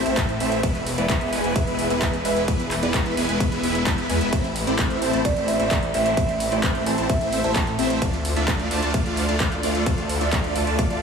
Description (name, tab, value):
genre	EDM, festival progressive house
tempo	130 BPM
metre	4/4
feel	straight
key	A harmonic minor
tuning	A4 = 440 Hz
part	bright studio string section	sustained chords	0.0-11.0 s	D3 to B4	-31 LUFS	left 1 dB	sidechain pumping
part	supersaw chords	riff	0.0-11.0 s	G#3 to A5	-24 LUFS	right 1 dB	phaser, sidechain pumping, dub echo
part	wide detuned saw bass	bass	0.0-11.0 s	E1 to A2	-28 LUFS	equal	chorus, sidechain pumping
part	big-room dance drum kit	drums	0.1-11.0 s	handclaps, hi-hat, ride cymbal	-28 LUFS	equal	overdrive, studio reverb
part	electronic kick drum	drums	0.2-10.9 s	none	-24 LUFS	left 1 dB	overdrive, studio reverb
part	kalimba	melody	5.2-7.8 s	D5 to A5	-26 LUFS	right 2 dB	dub echo
room	light reverb, digital ambience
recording	heavily compressed radio sound, multiband compression, small room ambience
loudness	-20 LUFS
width	side -6 dB against mid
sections	0.0-11.0 A section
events	none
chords	0.0 Am; 0.6 E; 4.3 Am; 8.0 Dm